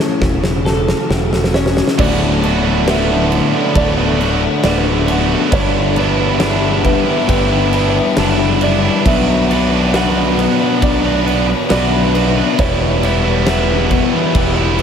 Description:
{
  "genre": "post-rock",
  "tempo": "68 BPM",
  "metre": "4/4",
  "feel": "straight",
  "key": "D major",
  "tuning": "A4 = 440 Hz",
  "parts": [
    { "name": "icy glass pad", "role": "sustained chords", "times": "0.0-14.8 s", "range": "C#3 to B5", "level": "-24 LUFS", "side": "left 1 dB", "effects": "chorus, built-in reverb" },
    { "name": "felt-muted upright piano", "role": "arpeggios", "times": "0.0-14.8 s", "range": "A4 to F#5", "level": "-24 LUFS", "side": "right 6 dB", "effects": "tape echo, slapback echo" },
    { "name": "twelve-string electric guitar", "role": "arpeggios", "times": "0.0-14.8 s", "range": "D2 to B4", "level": "-21 LUFS", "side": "left 2 dB", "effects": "tape echo" },
    { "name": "growling fingered electric bass", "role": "bass", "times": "0.2-14.8 s", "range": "D1 to B1", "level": "-18 LUFS", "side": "equal", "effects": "overdrive" },
    { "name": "huge arena drum kit", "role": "drums", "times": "0.2-14.8 s", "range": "crash cymbal, kick drum, snare drum", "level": "-19 LUFS", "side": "equal", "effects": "none" },
    { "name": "sludgy distorted guitar", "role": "riff", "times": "2.0-14.8 s", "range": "D2 to B4", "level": "-19 LUFS", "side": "left 8 dB", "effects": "overdrive" },
    { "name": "tight distorted guitar", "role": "riff", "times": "2.0-14.8 s", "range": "D2 to B4", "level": "-19 LUFS", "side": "right 9 dB", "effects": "distortion" }
  ],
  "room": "wet concert hall reverb, RT60 2.4 s",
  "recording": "big arena sound",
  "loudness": "-12 LUFS",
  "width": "side -7 dB against mid",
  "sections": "0.0-2.0 A section; 2.0-14.8 B section",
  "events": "build-up 0.0-2.0; drum fill 0.0-2.0",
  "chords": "0.0 A; 2.0 D6; 5.5 G6; 9.1 Bm; 12.6 Em"
}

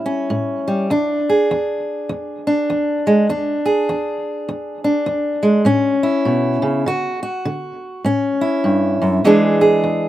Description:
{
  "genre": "blues",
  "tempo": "101 BPM",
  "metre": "4/4",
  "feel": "swing 61% on 8ths",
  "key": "unclear",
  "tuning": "A4 = 441 Hz",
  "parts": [
    { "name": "fingerpicked steel-string acoustic guitar", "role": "solo", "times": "0.0-10.1 s", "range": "E2 to G#4", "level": "-16 LUFS", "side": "equal", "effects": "slapback echo" }
  ],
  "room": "little or no reverb",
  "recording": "recorded outdoors, with no room sound",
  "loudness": "-15 LUFS",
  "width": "side -13 dB against mid",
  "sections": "0.0-10.1 A section",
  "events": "none",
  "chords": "0.0 A7; 0.9 E7; 5.7 A; 6.9 D; 8.0 A7; 9.2 E7"
}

